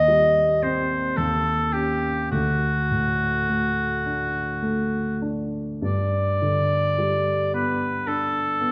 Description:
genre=classical, romantic duo for oboe and grand piano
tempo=49-57 BPM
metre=3/4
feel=rubato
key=G major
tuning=A4 = 440 Hz
part: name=warm oboe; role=melody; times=0.0-8.7 s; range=F#4 to Eb5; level=-25 LUFS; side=equal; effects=none
part: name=warm grand piano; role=accompaniment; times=0.0-8.7 s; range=D2 to G4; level=-27 LUFS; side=equal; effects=none
room=wet recital hall reverb, RT60 1.4 s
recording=none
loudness=-23 LUFS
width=mono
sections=0.0-8.7 A section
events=none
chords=0.0 Cm/Eb; 1.2 Eb7; 2.3 D; 5.8 G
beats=0.09 1.18 | 2.33 3.50 4.64 | 5.83 6.99 8.08

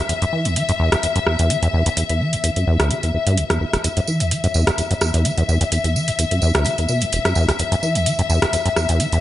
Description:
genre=acid house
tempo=128 BPM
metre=4/4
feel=swing 53% on 16ths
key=unclear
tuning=A4 = 440 Hz
part: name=warm studio string section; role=sustained chords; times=0.0-9.2 s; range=E5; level=-23 LUFS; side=left 5 dB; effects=none
part: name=acid bass, saw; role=riff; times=0.1-9.2 s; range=E1 to E3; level=-19 LUFS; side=equal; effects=tube saturation, digital delay
part: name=electro analog drum machine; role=drums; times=0.1-9.2 s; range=hi-hat, rim click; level=-22 LUFS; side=right 1 dB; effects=none
part: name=tambourine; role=percussion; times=3.8-9.2 s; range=none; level=-30 LUFS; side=right 4 dB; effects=none
room=light reverb, small room ambience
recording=nothing above 10.9 kHz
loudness=-16 LUFS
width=side -14 dB against mid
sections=0.0-9.2 A section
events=none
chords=none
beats=| 0.09 0.56 1.03 1.50 | 1.97 2.44 2.91 3.38 | 3.84 4.31 4.78 5.25 | 5.72 6.19 6.66 7.12 | 7.59 8.06 8.53 9.00

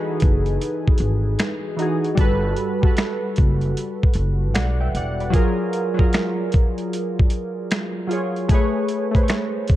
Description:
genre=lo-fi hip hop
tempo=76 BPM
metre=4/4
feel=swing 64% on 16ths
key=unclear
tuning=A4 = 438 Hz
part: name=warm analog keys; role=accompaniment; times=0.0-9.8 s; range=E3 to G5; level=-23 LUFS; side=equal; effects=chorus, cassette tape
part: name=upright bass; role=bass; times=0.2-5.3 s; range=E1 to B1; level=-22 LUFS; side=equal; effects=none
part: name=dusty soul sampler-style drum kit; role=drums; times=0.2-9.8 s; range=finger snaps, hi-hat, kick drum, snare drum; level=-19 LUFS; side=equal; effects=none
room=light reverb, digital ambience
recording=dark, warm production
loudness=-18 LUFS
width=side -14 dB against mid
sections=0.0-9.8 A section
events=none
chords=0.0 Emaj9; 2.2 Gmaj9; 5.3 F#maj9; 8.5 Amaj9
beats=0.60 1.39 | 2.18 2.97 3.76 4.55 | 5.34 6.13 6.92 7.71 | 8.49 9.28

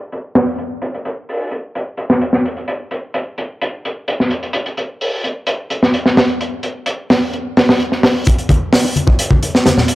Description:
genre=breakbeat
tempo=129 BPM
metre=4/4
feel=straight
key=none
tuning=none
part: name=crunchy breakbeat drum kit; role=drums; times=0.1-9.9 s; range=hi-hat, kick drum, snare drum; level=-14 LUFS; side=equal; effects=low-pass filter on kick, low-pass filter on hats, low-pass filter on snare, low-pass filter on room
part: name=bongos and congas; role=percussion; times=8.3-9.9 s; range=none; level=-18 LUFS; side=left 2 dB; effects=none
room=light reverb, small room reverb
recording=low-pass filter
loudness=-14 LUFS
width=side -17 dB against mid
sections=0.0-8.3 A section; 8.3-9.9 B section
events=filter sweep 0.0-8.3; drop 8.3-9.9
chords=none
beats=0.36 | 0.82 1.29 1.75 2.22 | 2.68 3.15 3.61 4.08 | 4.54 5.01 5.47 5.94 | 6.40 6.87 7.33 7.80 | 8.26 8.73 9.19 9.66

